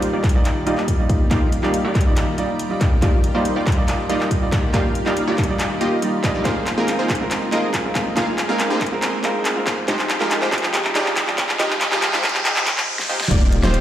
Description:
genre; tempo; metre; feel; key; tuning
future bass; 140 BPM; 4/4; half-time; Eb major; A4 = 439 Hz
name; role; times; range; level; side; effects
clear baby grand piano; accompaniment; 0.0-12.6 s; F3 to Eb5; -25 LUFS; right 2 dB; sidechain pumping, dub echo
shimmering ambient pad; sustained chords; 0.0-12.9 s; Eb3 to G4; -31 LUFS; left 1 dB; chorus, built-in reverb, sidechain pumping
supersaw stab; riff; 0.0-13.8 s; Ab3 to F5; -23 LUFS; equal; sidechain pumping, low-pass filter, dub echo
long sustained 808-style bass; bass; 0.0-13.8 s; Eb1 to Eb2; -30 LUFS; equal; none
dubstep drum kit; drums; 0.0-13.8 s; crash cymbal, handclaps, hi-hat, snare drum, toms; -23 LUFS; equal; overdrive, studio reverb
electronic kick drum; drums; 0.2-13.4 s; none; -20 LUFS; equal; studio reverb
riser and downlifter; sound effects; 9.2-13.8 s; none; -30 LUFS; equal; none
wide unison pluck; arpeggios; 13.3-13.8 s; C5 to D5; -28 LUFS; right 2 dB; analog chorus, sidechain pumping
room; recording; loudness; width
moderate digital room reverb, RT60 1.2 s; played on a big sound system in a bare room, large studio reverb, high-pass filter; -17 LUFS; side -11 dB against mid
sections
0.0-13.3 A section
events
build-up 0.0-13.3; drum fill 0.0-12.9, 13.0-13.3; filter sweep on supersaw synth 0.0-13.3; filter sweep 0.0-13.3; riser 9.2-13.3; break 12.9-13.3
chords
0.0 Ebmaj9; 6.5 Ab69/Eb; 9.9 Fm9

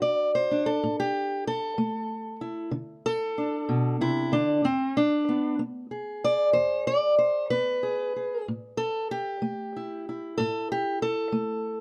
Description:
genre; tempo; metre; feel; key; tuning
acoustic country blues, solo or duo; 63 BPM (dotted quarters); 12/8; straight; unclear; A4 = 443 Hz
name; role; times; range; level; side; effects
fingerpicked steel-string acoustic guitar; solo; 0.0-11.8 s; E2 to D5; -27 LUFS; equal; none
room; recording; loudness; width
light reverb; dark, warm production; -27 LUFS; mono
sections
0.0-8.5 A section; 8.5-11.8 B section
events
steel-string acoustic guitar solo 0.0-8.5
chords
0.0 D7; 0.8 A5; 2.7 D5; 4.6 E7; 8.5 A7(no3)

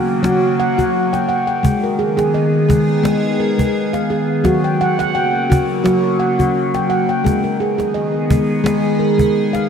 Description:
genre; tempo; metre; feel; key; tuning
world meditative, meditative tuned percussion; 86 BPM; 4/4; swing 54% on 16ths; G# minor; A4 = 439 Hz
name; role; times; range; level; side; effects
evolving wavetable pad; sustained chords; 0.0-9.7 s; C#3 to G#4; -18 LUFS; equal; phaser, built-in reverb
handpan; arpeggios; 0.0-9.7 s; F#3 to G5; -16 LUFS; left 1 dB; none
cajon; percussion; 0.1-9.7 s; none; -20 LUFS; right 1 dB; none
room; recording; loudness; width
wet lush hall reverb, RT60 2.5 s; dreamy mix soaked in reverb; -14 LUFS; side -7 dB against mid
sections
0.0-9.7 A section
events
none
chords
0.0 F#; 1.6 G#m; 4.5 F#; 7.2 G#m

